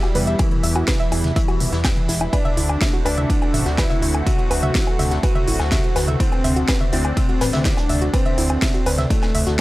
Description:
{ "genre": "melodic techno", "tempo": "124 BPM", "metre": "4/4", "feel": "straight", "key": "unclear", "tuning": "A4 = 439 Hz", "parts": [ { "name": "fat analog lead", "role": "melody", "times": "0.0-9.6 s", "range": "E3 to F#4", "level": "-26 LUFS", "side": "equal", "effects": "wide subtle chorus, sidechain pumping, analog delay" }, { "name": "dark detuned synth bell", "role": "second line", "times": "0.0-9.6 s", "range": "E4 to F#5", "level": "-34 LUFS", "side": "equal", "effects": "chorus, phaser, sidechain pumping, tape echo" }, { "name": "lush unison pad", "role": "sustained chords", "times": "0.0-9.6 s", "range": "D3 to F#4", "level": "-29 LUFS", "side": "equal", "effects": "chorus, phaser, vintage 12-bit sampler grit, sidechain pumping" }, { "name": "soft round pluck", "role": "arpeggios", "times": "0.0-9.6 s", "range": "E4 to G5", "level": "-27 LUFS", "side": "equal", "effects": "chorus, cassette tape, sidechain pumping, tape echo" }, { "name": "techno drum kit", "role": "drums", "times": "0.0-9.6 s", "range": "hi-hat, ride cymbal, snare drum, toms, woodblock", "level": "-25 LUFS", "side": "equal", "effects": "sidechain pumping on hats, sidechain pumping on cymbals, sidechain pumping on perc, sidechain pumping on toms" }, { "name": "vintage brush drum kit", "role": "drums", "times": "0.0-9.6 s", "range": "hi-hat, snare drum", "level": "-36 LUFS", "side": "left 1 dB", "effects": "none" }, { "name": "fat analog bass", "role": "bass", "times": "0.2-9.6 s", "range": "E1 to E2", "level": "-22 LUFS", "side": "equal", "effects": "sidechain pumping" }, { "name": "electronic kick drum", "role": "drums", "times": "0.4-9.6 s", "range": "none", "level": "-20 LUFS", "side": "equal", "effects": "none" } ], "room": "digital ambience", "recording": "none", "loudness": "-17 LUFS", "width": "side -18 dB against mid", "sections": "0.0-9.6 A section", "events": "none", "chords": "0.0 Em; 2.3 D7" }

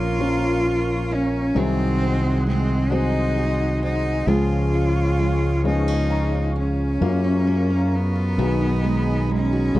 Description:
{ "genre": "acoustic folk-pop ballad", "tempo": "44 BPM (dotted quarters)", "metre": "6/8", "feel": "straight", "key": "F# major", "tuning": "A4 = 440 Hz", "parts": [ { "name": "bright cello", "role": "melody", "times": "0.0-9.8 s", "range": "B3 to E#4", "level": "-24 LUFS", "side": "equal", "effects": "none" }, { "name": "warm grand piano", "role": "accompaniment", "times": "0.0-9.8 s", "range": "F#1 to A#5", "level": "-27 LUFS", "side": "left 4 dB", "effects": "none" }, { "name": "lush unison pad", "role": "sustained chords", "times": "0.0-9.8 s", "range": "G#4 to C#6", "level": "-33 LUFS", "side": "equal", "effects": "chorus" }, { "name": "picked steel-string acoustic guitar", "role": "arpeggios", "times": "0.0-9.8 s", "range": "D#3 to F#4", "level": "-28 LUFS", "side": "right 5 dB", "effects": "none" }, { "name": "fretless electric bass", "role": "bass", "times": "0.0-9.8 s", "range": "A#1 to F#2", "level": "-22 LUFS", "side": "equal", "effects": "none" } ], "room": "little or no reverb", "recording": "dry, close 1970s-style studio recording", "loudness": "-18 LUFS", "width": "side -16 dB against mid", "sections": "0.0-7.0 A section; 7.0-9.8 B section", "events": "none", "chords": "0.0 A#m; 1.6 G#7/B#; 4.3 C#; 7.0 F#maj7; 8.4 B6" }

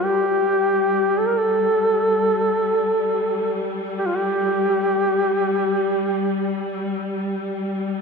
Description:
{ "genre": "caucasian folk, Caucasian lament", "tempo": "free time", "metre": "none", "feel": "none", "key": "unclear", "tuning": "A4 = 440 Hz", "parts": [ { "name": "mellow duduk", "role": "melody", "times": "0.0-6.9 s", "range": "F4 to Bb4", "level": "-20 LUFS", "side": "equal", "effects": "slapback echo" }, { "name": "warm studio string section", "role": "drone", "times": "0.0-8.0 s", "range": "G3", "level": "-26 LUFS", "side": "left 2 dB", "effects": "none" } ], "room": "wet cathedral reverb, RT60 4.9 s", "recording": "dark, warm production", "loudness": "-19 LUFS", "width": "side -4 dB against mid", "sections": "0.0-8.0 A section", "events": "none", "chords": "none" }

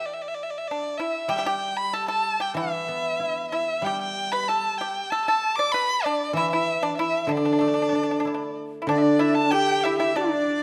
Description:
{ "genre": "chinese traditional, Chinese chamber ensemble", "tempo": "95 BPM", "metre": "2/4", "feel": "rubato", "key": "D zhi mode", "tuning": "A4 = 441 Hz", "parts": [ { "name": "clear erhu", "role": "melody", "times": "0.0-10.6 s", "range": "D5 to D6", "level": "-28 LUFS", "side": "equal", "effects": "none" }, { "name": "guzheng", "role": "accompaniment", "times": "0.0-10.6 s", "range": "D3 to E4", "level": "-29 LUFS", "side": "equal", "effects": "none" }, { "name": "pipa", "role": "second line", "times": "0.7-10.6 s", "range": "D4 to D5", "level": "-30 LUFS", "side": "equal", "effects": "none" }, { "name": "bright dizi", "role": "second line", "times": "8.9-10.6 s", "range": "D5 to A5", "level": "-31 LUFS", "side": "equal", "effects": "none" }, { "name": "rich horsehead fiddle", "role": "second line", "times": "8.9-10.6 s", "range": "D4 to G4", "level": "-27 LUFS", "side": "equal", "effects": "none" } ], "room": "moderate scoring stage reverb, RT60 1.8 s", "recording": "close, detailed microphones", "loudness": "-24 LUFS", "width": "mono", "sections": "0.0-8.9 A section; 8.9-10.6 B section", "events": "none", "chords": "none" }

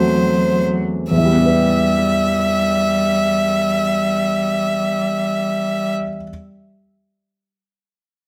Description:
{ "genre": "neoclassical piano and strings", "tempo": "46 BPM (dotted quarters)", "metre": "6/8", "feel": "rubato", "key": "E minor", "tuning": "A4 = 440 Hz", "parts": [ { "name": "rich violin", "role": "melody", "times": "0.0-5.9 s", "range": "C5 to E5", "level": "-22 LUFS", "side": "equal", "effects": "none" }, { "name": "clear cello", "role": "second line", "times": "0.0-5.9 s", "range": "F#3 to G3", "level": "-23 LUFS", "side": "equal", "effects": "none" }, { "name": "warm baby grand piano", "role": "accompaniment", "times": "0.0-6.3 s", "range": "E2 to B4", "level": "-23 LUFS", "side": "equal", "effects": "none" } ], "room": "light reverb", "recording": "close, detailed microphones", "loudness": "-18 LUFS", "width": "mono", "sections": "0.0-1.1 A section; 1.1-6.3 B section", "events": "slowing down 0.0-1.1", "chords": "0.0 F#m7b5/E; 1.1 Em" }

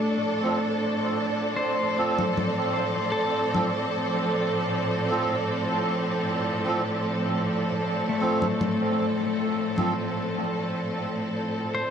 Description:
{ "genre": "ambient dub", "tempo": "77 BPM", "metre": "4/4", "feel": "straight", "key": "unclear", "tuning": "A4 = 438 Hz", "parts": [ { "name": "clear studio string section", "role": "sustained chords", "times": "0.0-11.9 s", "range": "A2 to A4", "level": "-27 LUFS", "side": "right 1 dB", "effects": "vintage 12-bit sampler grit" }, { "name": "pedal steel guitar", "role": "arpeggios", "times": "0.0-11.9 s", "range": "A3 to C5", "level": "-29 LUFS", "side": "left 2 dB", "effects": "tape echo" }, { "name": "wind-like tuned noise texture", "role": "texture", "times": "0.0-11.9 s", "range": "D5", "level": "-34 LUFS", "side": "right 1 dB", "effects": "built-in reverb" }, { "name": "melodica", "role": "stabs", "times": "0.4-9.9 s", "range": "F3 to A4", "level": "-31 LUFS", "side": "right 3 dB", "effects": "low-pass filter, dub echo" }, { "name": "congas", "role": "drums", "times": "2.2-3.7, 8.4-9.9 s", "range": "none", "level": "-32 LUFS", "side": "left 3 dB", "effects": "none" } ], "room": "moderate echo chamber reverb, RT60 2.4 s", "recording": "echo-heavy mix", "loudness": "-23 LUFS", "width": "side -8 dB against mid", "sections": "0.0-11.9 A section", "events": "none", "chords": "0.0 F" }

